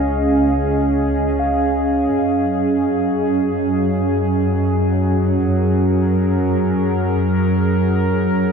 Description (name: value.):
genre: ambient.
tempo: free time.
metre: none.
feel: none.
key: unclear.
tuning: A4 = 441 Hz.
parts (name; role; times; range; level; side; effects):
warbly tape-like pad; sustained chords; 0.0-8.5 s; Gb3 to F5; -17 LUFS; right 1 dB; chorus, built-in reverb.
muted felt-like synth keys; arpeggios; 0.0-2.6 s; F5; -28 LUFS; left 2 dB; chorus, tape echo.
muted chamber double bass section; bass; 0.0-8.5 s; Db2 to Gb2; -21 LUFS; left 1 dB; none.
room: wet huge ambient reverb, RT60 7.2 s.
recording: none.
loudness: -15 LUFS.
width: side -6 dB against mid.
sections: 0.0-8.5 A section.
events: none.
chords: 0.0 Db; 2.1 Gb6.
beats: free time.